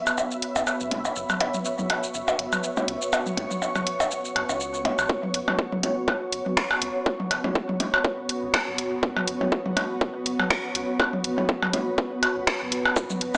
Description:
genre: minimal techno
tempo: 122 BPM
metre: 4/4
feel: swing 55% on 16ths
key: unclear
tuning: A4 = 440 Hz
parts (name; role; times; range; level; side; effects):
- granular cloud pad; texture; 0.0-13.4 s; B3 to C#6; -28 LUFS; equal; built-in reverb, sidechain pumping
- pulsing gated texture; texture; 0.0-5.1 s; E5; -35 LUFS; equal; chorus, built-in reverb, sidechain pumping
- garage drum kit; drums; 0.1-13.4 s; finger snaps, hi-hat, shaker; -27 LUFS; equal; overdrive, studio reverb
- electronic percussion blips and toms; percussion; 0.1-13.4 s; none; -25 LUFS; equal; studio reverb
- round analog bass; bass; 0.6-13.3 s; F#1 to C#2; -43 LUFS; equal; sidechain pumping
- electronic kick drum; drums; 5.1-13.1 s; none; -24 LUFS; equal; overdrive, high-pass filter on kick, studio reverb
room: moderate lush hall reverb, RT60 2.4 s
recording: dry, gritty hardware recording, small speaker sound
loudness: -23 LUFS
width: side -32 dB against mid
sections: 0.0-5.1 A section; 5.1-13.4 B section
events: build-up 5.1-13.4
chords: 0.0 F#sus4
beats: 0.18 0.67 | 1.16 1.65 2.15 2.64 | 3.13 3.62 4.11 4.60 | 5.10 5.59 6.08 6.57 | 7.06 7.55 8.05 8.54 | 9.03 9.52 10.01 10.51 | 11.00 11.49 11.98 12.47 | 12.96

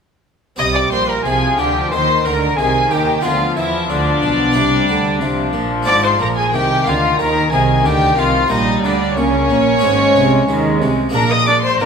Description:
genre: classical, baroque-style concerto movement with solo episodes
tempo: 91 BPM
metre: 4/4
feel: straight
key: C minor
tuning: A4 = 439 Hz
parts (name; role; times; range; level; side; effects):
- dark violin; melody; 0.6-11.9 s; Db4 to Eb5; -19 LUFS; left 2 dB; none
- rich chamber violin section; melody; 0.6-11.9 s; Db5 to Eb6; -20 LUFS; equal; none
- warm chamber violin section; second line; 0.6-11.9 s; Db4 to Eb5; -21 LUFS; left 2 dB; none
- dark chamber viola section; accompaniment; 0.6-11.9 s; Eb3 to D4; -21 LUFS; left 1 dB; none
- harpsichord; accompaniment; 0.6-11.9 s; Ab2 to G4; -25 LUFS; equal; none
- rich chamber double bass section; bass; 0.6-11.9 s; Ab1 to E2; -22 LUFS; right 4 dB; none
- warm chamber cello section; bass; 0.6-11.9 s; Ab2 to E3; -22 LUFS; right 2 dB; none
room: wet recital hall reverb, RT60 1.6 s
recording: minimal, uncompressed stereo recording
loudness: -13 LUFS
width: side -6 dB against mid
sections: 0.6-11.9 A section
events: none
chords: 0.6 Cm; 3.2 Bdim/D; 4.6 Cm; 5.9 Ab; 8.5 Gdim/Bb; 9.8 Ab; 11.2 Bb7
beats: | 0.58 1.25 1.92 2.58 | 3.24 3.90 4.56 5.22 | 5.88 6.54 7.20 7.86 | 8.51 9.17 9.83 10.49 | 11.15 11.81

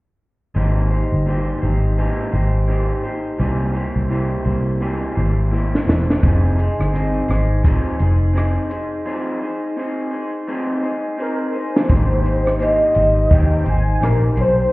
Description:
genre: indie pop, bedroom pop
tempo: 85 BPM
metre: 4/4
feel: swing 60% on 16ths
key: Ab major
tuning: A4 = 440 Hz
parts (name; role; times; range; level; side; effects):
- electric guitar through a small old amp; accompaniment; 0.5-14.7 s; C3 to C5; -23 LUFS; equal; lush chorus, warbly pitch drift
- vintage muted fingered electric bass; bass; 0.6-14.7 s; E1 to Eb2; -17 LUFS; equal; none
- compact cocktail drum kit; drums; 5.8-14.6 s; hi-hat, kick drum, rim click, snare drum; -17 LUFS; equal; none
- warm velvety synth lead; melody; 11.2-14.7 s; Bb4 to Ab5; -18 LUFS; equal; analog chorus, analog delay
room: moderate spring reverb, RT60 2.8 s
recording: heard muffled through a wall, stone room reverb, EQ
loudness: -16 LUFS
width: side -21 dB against mid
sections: 0.6-11.9 A section; 11.9-14.7 B section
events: drum fill 5.5-6.2, 11.2-11.9; break 9.1-11.9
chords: 0.6 Abmaj9; 3.4 C7b13; 6.2 Fm7; 11.9 Abmaj9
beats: | 0.56 1.27 1.98 2.69 | 3.40 4.11 4.81 5.52 | 6.23 6.94 7.65 8.36 | 9.06 9.77 10.48 11.19 | 11.90 12.60 13.31 14.02

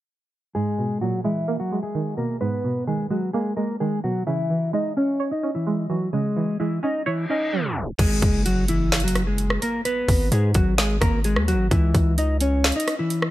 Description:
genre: hip hop, trap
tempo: 129 BPM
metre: 4/4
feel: half-time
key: G# minor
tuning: A4 = 440 Hz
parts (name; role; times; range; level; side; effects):
- mellow electric guitar; melody; 0.5-13.3 s; E3 to D#5; -24 LUFS; left 1 dB; low-pass filter, ping-pong delay
- string-like resonator pluck; accompaniment; 0.6-8.0 s; G#2 to C#5; -26 LUFS; right 3 dB; chorus, low-pass filter
- reverse cymbal and impact; sound effects; 7.2-9.9 s; none; -32 LUFS; left 1 dB; none
- long sustained 808-style bass; bass; 8.0-12.7 s; F#1 to G#2; -22 LUFS; equal; none
- trap drum kit; drums; 8.0-13.3 s; crash cymbal, hi-hat, kick drum, rim click, snare drum; -23 LUFS; equal; none
room: digital ambience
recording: low-pass filter, tape stop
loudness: -20 LUFS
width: side -15 dB against mid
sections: 0.6-8.0 A section; 8.0-13.3 B section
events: filter sweep 0.6-8.0; reverse cymbal 7.2-8.0; tape stop 7.5-8.0; impact 8.0-9.9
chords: 0.6 G#madd9; 4.3 C#m; 8.0 G#m; 11.7 C#m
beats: | 0.55 1.01 1.48 1.95 | 2.41 2.88 3.34 3.81 | 4.27 4.74 5.20 5.67 | 6.13 6.60 7.06 7.53 | 7.99 8.46 8.92 9.39 | 9.85 10.32 10.78 11.25 | 11.71 12.18 12.64 13.11

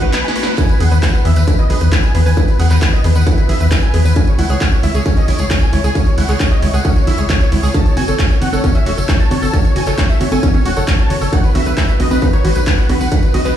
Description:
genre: uplifting trance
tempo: 134 BPM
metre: 4/4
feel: straight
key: E major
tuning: A4 = 440 Hz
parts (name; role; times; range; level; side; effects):
- supersaw chords; melody; 0.0-13.5 s; B4 to A5; -22 LUFS; equal; sidechain pumping, low-pass filter, tape echo
- analog pluck; arpeggios; 0.0-13.5 s; C#4 to B4; -23 LUFS; right 2 dB; chorus, sidechain pumping, tape echo
- tight sequencer bass; bass; 0.0-13.5 s; E1 to E2; -14 LUFS; equal; sidechain pumping
- punchy analog drum machine; drums; 0.0-13.5 s; congas, handclaps, hi-hat, snare drum; -22 LUFS; equal; none
- reverse cymbal; sound effects; 0.0-0.6 s; none; -30 LUFS; right 3 dB; none
- electronic kick drum; drums; 0.6-13.2 s; none; -14 LUFS; equal; distortion
- tambourine; percussion; 0.6-13.5 s; none; -32 LUFS; right 3 dB; none
room: little or no reverb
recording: played on a big sound system in a bare room, stone room reverb, studio reverb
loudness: -11 LUFS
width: side -10 dB against mid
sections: 0.0-13.6 A section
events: reverse cymbal 0.0-0.6; drum fill 0.1-0.6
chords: 0.0 B; 0.6 E; 4.2 C#m; 7.7 F#m; 11.3 B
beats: 0.13 | 0.58 1.03 1.48 1.92 | 2.37 2.82 3.27 3.71 | 4.16 4.61 5.06 5.51 | 5.95 6.40 6.85 7.30 | 7.75 8.19 8.64 9.09 | 9.54 9.98 10.43 10.88 | 11.33 11.77 12.22 12.67 | 13.12

